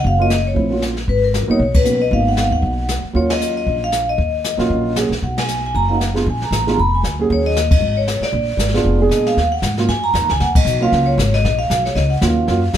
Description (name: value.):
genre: jazz, small-group swing and bop.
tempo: 232 BPM.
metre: 4/4.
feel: swing 57% on 8ths.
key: Eb minor.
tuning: A4 = 440 Hz.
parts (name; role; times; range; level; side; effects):
vibraphone with medium hard mallets; melody; 0.0-12.8 s; Bb4 to Cb6; -20 LUFS; left 1 dB; none.
upright bass; bass; 0.0-12.8 s; F1 to Bb2; -19 LUFS; equal; none.
jazz brush drum kit; drums; 0.0-12.8 s; brushed snare drum, hi-hat, kick drum, ride cymbal, snare drum; -21 LUFS; left 1 dB; none.
dark baby grand piano; accompaniment; 0.2-12.6 s; F3 to Ab4; -19 LUFS; right 3 dB; none.
room: light reverb.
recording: band playing live in one room.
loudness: -14 LUFS.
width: side -10 dB against mid.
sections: 0.0-9.4 A section; 9.4-12.8 A section.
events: band accent 1.7, 3.3, 5.3, 7.7, 10.5.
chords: 0.0 Ebm9; 1.1 Abm9; 3.1 Ebm9; 5.2 B5; 6.3 Bb7; 7.3 Ebm7; 7.8 Absus4; 8.3 Bb7b9; 9.4 Ebm9.